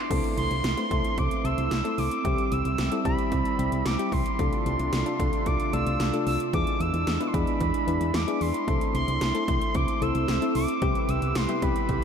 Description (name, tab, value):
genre	synth-pop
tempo	112 BPM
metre	4/4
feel	straight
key	unclear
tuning	A4 = 440 Hz
part	expressive synth lead	melody	0.0-12.0 s	B5 to E6	-30 LUFS	equal	chorus, ping-pong delay
part	soft electric-piano-like synth keys	accompaniment	0.1-11.9 s	G3 to C5	-31 LUFS	left 5 dB	chorus
part	chorused pulse-width pad	sustained chords	0.1-12.0 s	C3 to B4	-31 LUFS	right 3 dB	tremolo
part	solid FM bass	bass	0.1-12.0 s	C2 to E2	-29 LUFS	right 1 dB	none
part	80s electronic pad drums	drums	0.1-12.0 s	crash cymbal, hi-hat, kick drum, snare drum	-30 LUFS	right 1 dB	overdrive
room	moderate huge ambient reverb, RT60 8.5 s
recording	dreamy mix soaked in reverb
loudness	-23 LUFS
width	side -7 dB against mid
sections	0.1-12.0 A section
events	none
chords	0.1 Am/C; 2.2 C; 4.4 Dm/C; 6.5 E7; 8.7 Am/C; 10.8 Em/C